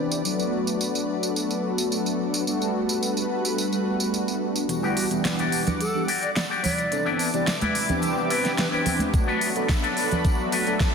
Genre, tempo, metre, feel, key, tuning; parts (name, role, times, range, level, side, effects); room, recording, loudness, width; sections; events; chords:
nu-disco, nu disco; 108 BPM; 4/4; straight; E minor; A4 = 440 Hz
mellow synth brass; accompaniment; 0.0-10.9 s; E3 to A4; -26 LUFS; equal; chorus, sidechain pumping, analog delay
lush unison pad; sustained chords; 0.0-10.9 s; C3 to D6; -31 LUFS; equal; chorus, sidechain pumping
pop drum kit; drums; 0.1-10.9 s; hi-hat, snare drum, tambourine; -29 LUFS; right 1 dB
picked electric bass; bass; 4.7-10.1 s; E1 to D2; -38 LUFS; equal; high-pass filter
tambourine and congas; percussion; 4.7-10.9 s; -31 LUFS; right 2 dB
electric guitar with an envelope filter; riff; 4.8-10.7 s; D4 to D5; -28 LUFS; left 4 dB; wide subtle chorus, low-pass filter
hollow concert flute; melody; 5.8-8.8 s; A4 to D5; -31 LUFS; equal; tape echo
electronic kick drum; drums; 9.1-10.9 s; -22 LUFS; equal
moderate lush hall reverb, RT60 2.7 s; dense, heavily limited modern master; -22 LUFS; side -6 dB against mid
0.0-4.7 A section; 4.7-10.9 B section
build-up 4.7-10.9
0.2 Bm7; 2.5 Gmaj9; 4.7 Em9; 6.6 Cmaj9; 9.1 Bm7